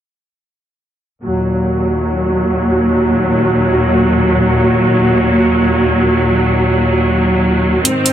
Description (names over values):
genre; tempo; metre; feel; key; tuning
heavy wobble dubstep; free time; none; none; Eb minor; A4 = 441 Hz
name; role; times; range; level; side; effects
bright studio string section; sustained chords; 1.2-8.1 s; Eb2 to C4; -11 LUFS; equal; low-pass filter
electronic hi-hat; drums; 7.8-8.1 s; none; -13 LUFS; right 2 dB; none
room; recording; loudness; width
light reverb, small room ambience; dense, heavily limited modern master; -11 LUFS; side -10 dB against mid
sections
1.2-8.1 A section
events
filter sweep on string section 1.2-8.1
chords
1.2 Ebm